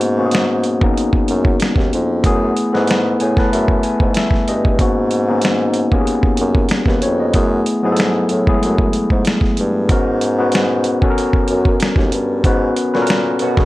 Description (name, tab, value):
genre	R&B, neo-soul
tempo	94 BPM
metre	4/4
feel	swing 53% on 16ths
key	unclear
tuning	A4 = 440 Hz
part	overdriven tine electric piano	accompaniment	0.0-13.7 s	B2 to A5	-16 LUFS	left 2 dB	none
part	mellow bassoon	bass	0.0-13.7 s	D#2 to B2	-20 LUFS	right 1 dB	none
part	dusty soul sampler-style drum kit	drums	0.0-13.7 s	hi-hat, kick drum, snare drum	-17 LUFS	equal	none
part	electric guitar through a small old amp	second line	13.4-13.7 s	C#4 to F#4	-23 LUFS	right 10 dB	ensemble chorus
room	light reverb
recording	dark, warm production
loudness	-13 LUFS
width	side -17 dB against mid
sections	0.0-13.7 A section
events	tine electric piano fill 2.9-4.8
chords	0.0 G#m11; 2.2 F#m11; 4.8 G#m11; 7.3 F#m11; 9.9 G#m11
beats	0.32 0.96 1.60 | 2.23 2.87 3.51 4.15 | 4.79 5.43 6.06 6.70 | 7.34 7.98 8.62 9.26 | 9.89 10.53 11.17 11.81 | 12.45 13.09